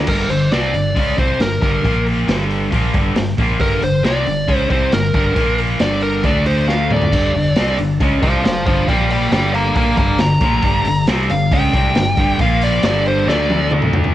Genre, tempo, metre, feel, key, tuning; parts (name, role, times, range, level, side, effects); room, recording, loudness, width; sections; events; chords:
hard rock; 136 BPM; 4/4; straight; G minor; A4 = 439 Hz
overdriven tonewheel organ; sustained chords; 0.0-0.1, 7.1-14.1 s; G3 to D5; -31 LUFS; equal
crunchy overdriven guitar; riff; 0.0-14.1 s; G2 to D4; -21 LUFS; right 7 dB; cassette tape
distorted electric guitar; riff; 0.0-14.1 s; G2 to D4; -21 LUFS; left 6 dB; distortion, cassette tape
fingered electric bass; bass; 0.0-14.1 s; G1 to D2; -21 LUFS; equal
smooth overdriven lead guitar; melody; 0.1-13.7 s; Bb4 to Bb5; -20 LUFS; equal; cassette tape
raw garage drum kit; drums; 0.1-14.1 s; crash cymbal, hi-hat, kick drum, snare drum, splash cymbal, toms; -19 LUFS; equal; cassette tape
light reverb, small room ambience; home recording on cassette; -14 LUFS; side -13 dB against mid
0.1-14.1 A section
lead electric guitar solo 0.1-14.1; drum fill 6.7-7.1, 13.3-14.1
0.1 G5; 1.8 Bb5; 2.3 Gm; 5.4 Bb5; 5.8 Gm; 6.2 D5; 7.1 G5; 8.9 Bb5; 9.3 Gm; 12.4 Bb5; 12.8 G5; 13.3 D5